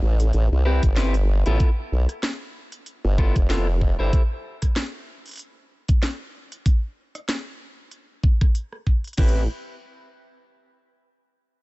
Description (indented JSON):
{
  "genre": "glitch hop",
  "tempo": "95 BPM",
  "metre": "4/4",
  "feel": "swing 56% on 16ths",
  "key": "A minor",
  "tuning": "A4 = 441 Hz",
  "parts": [
    { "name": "formant-sweep wobble bass", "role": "bass", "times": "0.0-4.1, 9.2-9.5 s", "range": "F1 to C2", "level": "-20 LUFS", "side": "equal", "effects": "chorus" },
    { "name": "drum and bass drum kit", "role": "drums", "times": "0.2-9.4 s", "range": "crash cymbal, hi-hat, rim click, snare drum", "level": "-31 LUFS", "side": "equal", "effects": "none" },
    { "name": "clean electric guitar", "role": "stabs", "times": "0.7-4.2, 9.2-9.4 s", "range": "B3 to C5", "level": "-30 LUFS", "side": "left 1 dB", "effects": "sidechain pumping, dub echo" },
    { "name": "electronic kick drum", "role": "drums", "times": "0.8-9.3 s", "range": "none", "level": "-19 LUFS", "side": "equal", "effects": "none" }
  ],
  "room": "little or no reverb",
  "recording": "nothing above 7.9 kHz",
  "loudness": "-20 LUFS",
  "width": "side -21 dB against mid",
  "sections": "0.0-9.2 A section; 9.2-11.6 B section",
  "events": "none",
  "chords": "0.0 Am9; 1.6 G13; 4.1 N.C.; 9.2 Am9",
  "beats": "0.34 0.97 | 1.60 2.23 2.87 3.50 | 4.13 4.76 5.39 6.02 | 6.66 7.29 7.92 8.55 | 9.18"
}